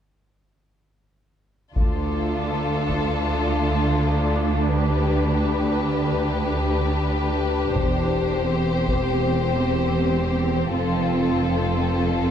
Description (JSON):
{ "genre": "cinematic, epic orchestral film score", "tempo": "80 BPM", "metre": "4/4", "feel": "straight", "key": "D dorian", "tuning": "A4 = 439 Hz", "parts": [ { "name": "warm symphonic violin section", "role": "melody", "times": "1.8-12.3 s", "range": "A4 to C5", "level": "-28 LUFS", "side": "left 5 dB", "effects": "none" }, { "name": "warm symphonic violin section", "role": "second line", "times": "1.8-12.3 s", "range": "F4 to G4", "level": "-28 LUFS", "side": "left 5 dB", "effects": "none" }, { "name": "dark symphonic viola section", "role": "accompaniment", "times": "1.8-12.3 s", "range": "C4 to D4", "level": "-27 LUFS", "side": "right 1 dB", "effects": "none" }, { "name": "warm studio double bass section", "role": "bass", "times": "1.8-12.3 s", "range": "E1 to D2", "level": "-26 LUFS", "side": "right 2 dB", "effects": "none" }, { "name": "warm symphonic cello section", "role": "bass", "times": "1.8-12.3 s", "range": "D2 to F2", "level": "-26 LUFS", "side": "right 2 dB", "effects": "none" }, { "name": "taiko ensemble", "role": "drums", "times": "1.8-3.2, 7.8-9.2 s", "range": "none", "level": "-25 LUFS", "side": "left 1 dB", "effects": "none" } ], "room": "light reverb", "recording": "dark, warm production", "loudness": "-20 LUFS", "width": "side -9 dB against mid", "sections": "1.8-12.3 A section", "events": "build-up 1.8-12.3", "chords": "1.8 Dm; 7.8 C/E; 10.7 F" }